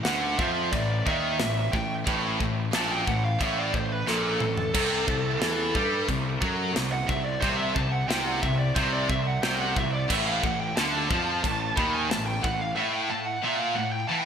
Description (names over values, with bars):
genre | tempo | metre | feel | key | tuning
heavy metal | 90 BPM | 4/4 | straight | unclear | A4 = 440 Hz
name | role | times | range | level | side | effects
high-gain lead guitar | melody | 0.0-14.3 s | A4 to B5 | -29 LUFS | right 1 dB | distortion, ping-pong delay
fuzz picked electric bass | bass | 0.0-12.7 s | A1 to G2 | -32 LUFS | equal | overdrive
modern studio drum kit | drums | 0.0-12.6 s | china cymbal, crash cymbal, kick drum, snare drum, splash cymbal, toms | -30 LUFS | equal | gated reverb
heavy high-gain guitar | riff | 0.1-14.3 s | A2 to G3 | -32 LUFS | equal | distortion
high-gain distorted guitar | riff | 0.1-14.3 s | A2 to G3 | -31 LUFS | right 7 dB | distortion
scooped high-gain guitar | riff | 0.1-14.3 s | A2 to G3 | -32 LUFS | left 8 dB | distortion
room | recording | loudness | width
moderate lush hall reverb, RT60 2.9 s | bright 1980s-style digital production | -23 LUFS | side -7 dB against mid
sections
0.0-14.3 A section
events
lead electric guitar solo 0.0-14.3; drum fill 4.1-4.8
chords
0.0 A5; 4.8 C5; 10.1 A5